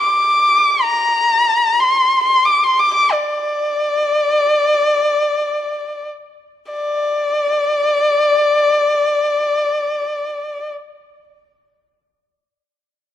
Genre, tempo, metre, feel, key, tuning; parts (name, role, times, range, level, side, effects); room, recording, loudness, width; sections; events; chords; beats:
chinese traditional; free time; A4 = 444 Hz
clear erhu; melody; 0.0-10.7 s; D5 to D6; -14 LUFS; left 1 dB
moderate scoring stage reverb, RT60 2.0 s; dark, warm production; -14 LUFS; side -11 dB against mid
0.0-6.7 A section; 6.7-10.9 B section
slowing down 0.0-6.7
free time